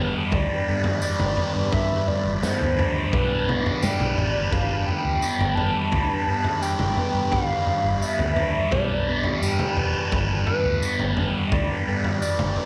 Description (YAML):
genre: psychedelic rock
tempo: 86 BPM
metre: 4/4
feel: straight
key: G major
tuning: A4 = 440 Hz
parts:
  - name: muted studio string section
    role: sustained chords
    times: 0.0-12.7 s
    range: G3 to B5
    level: -36 LUFS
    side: equal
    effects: none
  - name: thick fuzz guitar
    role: riff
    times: 0.0-12.7 s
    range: G2 to G4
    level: -28 LUFS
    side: equal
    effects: distortion, phaser
  - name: vintage muted fingered electric bass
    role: bass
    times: 0.0-12.6 s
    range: E1 to G2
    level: -30 LUFS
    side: equal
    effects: none
  - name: overtone-sweeping drone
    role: drone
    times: 0.1-12.7 s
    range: G2 to G3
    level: -43 LUFS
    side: equal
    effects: none
  - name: hollow square lead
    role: melody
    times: 0.3-12.7 s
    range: B4 to A5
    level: -30 LUFS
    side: equal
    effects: chorus, slapback echo
  - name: raw garage drum kit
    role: drums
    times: 0.3-12.7 s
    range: kick drum, snare drum, toms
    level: -29 LUFS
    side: equal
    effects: none
  - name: tambourine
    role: percussion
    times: 1.0-12.4 s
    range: none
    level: -39 LUFS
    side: equal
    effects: none
room: light reverb, studio reverb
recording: none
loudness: -23 LUFS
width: mono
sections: 0.0-12.7 A section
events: none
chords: 0.0 G